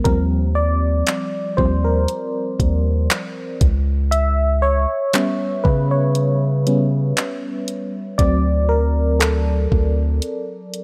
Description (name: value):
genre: contemporary R&B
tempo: 59 BPM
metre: 4/4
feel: swing 54% on 16ths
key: unclear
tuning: A4 = 438 Hz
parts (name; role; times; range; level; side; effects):
- FM electric piano with tremolo; accompaniment; 0.0-10.8 s; F3 to E5; -23 LUFS; equal; none
- long sustained 808-style bass; bass; 0.1-10.2 s; C#2 to C#3; -20 LUFS; equal; none
- smooth R&B drum kit; drums; 0.1-10.8 s; handclaps, hi-hat, kick drum; -22 LUFS; equal; none
room: little or no reverb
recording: dark, warm production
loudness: -19 LUFS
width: mono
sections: 0.0-10.8 A section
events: FM electric piano solo 0.0-10.8; break 10.2-10.8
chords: 0.1 Eb69; 3.6 C#m7b5; 8.2 D7